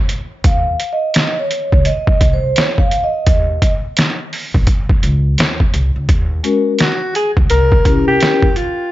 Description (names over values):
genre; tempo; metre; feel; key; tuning
hip hop, jazz-hop; 85 BPM; 4/4; swing 63% on 16ths; unclear; A4 = 443 Hz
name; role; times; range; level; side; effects
trip hop sampler-style drum kit; drums; 0.1-8.8 s; hi-hat, kick drum, snare drum; -14 LUFS; equal; overdrive, vintage 12-bit sampler grit
upright bass; bass; 0.4-8.2 s; Bb1 to Eb2; -16 LUFS; equal; none
vibraphone with soft mallets; accompaniment; 0.5-8.4 s; Ab3 to F5; -17 LUFS; equal; none
breathy alto saxophone; melody; 6.8-8.9 s; F4 to Bb4; -16 LUFS; left 1 dB; analog delay
room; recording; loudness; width
small room ambience; nothing above 7.7 kHz; -12 LUFS; side -15 dB against mid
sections
0.0-6.1 A section; 6.1-8.9 B section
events
vibraphone solo 0.0-6.1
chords
0.4 Eb5; 6.1 Ebm7; 7.5 C7b9